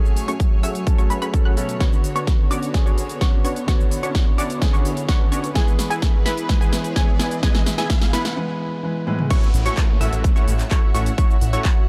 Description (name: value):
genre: EDM, festival progressive house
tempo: 128 BPM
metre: 4/4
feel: straight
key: unclear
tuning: A4 = 440 Hz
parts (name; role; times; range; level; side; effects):
- warm baby grand piano; accompaniment; 0.0-9.3 s; A2 to C#5; -30 LUFS; equal; sidechain pumping, delay
- rich studio string section; sustained chords; 0.0-11.9 s; D3 to G#5; -34 LUFS; equal; sidechain pumping
- unison pluck; arpeggios; 0.0-11.9 s; G#5 to F#6; -32 LUFS; equal; sidechain pumping, delay
- supersaw stab; riff; 0.0-11.9 s; A3 to F#5; -31 LUFS; equal; sidechain pumping, low-pass filter, delay
- big-room dance drum kit; drums; 0.1-11.7 s; crash cymbal, handclaps, hi-hat, shaker, snare drum, toms; -31 LUFS; equal; none
- electronic kick drum; drums; 0.4-11.7 s; none; -20 LUFS; equal; overdrive
- riser and downlifter; sound effects; 5.2-11.9 s; none; -40 LUFS; equal; none
- detuned saw bass; bass; 9.5-11.6 s; A1; -23 LUFS; equal; chorus, sidechain pumping
room: digital ambience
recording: dark, warm production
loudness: -20 LUFS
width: mono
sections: 0.0-9.3 A section; 9.3-11.9 B section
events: build-up 0.0-9.3; filter sweep on supersaw synth 0.0-9.3; drum fill 1.8-8.4, 9.1; break 8.4-9.3; drop 9.3-11.9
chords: 0.0 F#madd9; 1.8 Bmadd9; 5.6 E; 9.3 A6